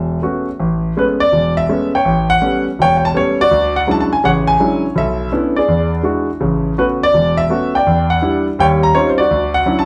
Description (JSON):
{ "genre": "solo jazz", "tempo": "165 BPM", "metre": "4/4", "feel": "swing 64% on 8ths", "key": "A major", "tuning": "A4 = 440 Hz", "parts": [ { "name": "warm concert grand piano", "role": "solo", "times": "0.0-9.9 s", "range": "E1 to A#5", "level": "-15 LUFS", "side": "equal", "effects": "none" } ], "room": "moderate large studio reverb, RT60 1.2 s", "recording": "band playing live in one room", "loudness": "-15 LUFS", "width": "mono", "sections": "0.6-9.9 A section", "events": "none", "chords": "0.0 A69; 0.6 Amaj9; 2.1 A9; 3.5 Dmaj9#11; 5.0 Bm11; 5.7 E9; 6.4 A69; 7.9 Em7; 8.6 D#13; 9.3 Dmaj9", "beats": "0.23 | 0.59 0.96 1.32 1.69 | 2.05 2.42 2.78 3.14 | 3.51 3.87 4.24 4.60 | 4.96 5.33 5.69 6.05 | 6.42 6.78 7.14 7.50 | 7.86 8.23 8.59 8.95 | 9.31 9.67" }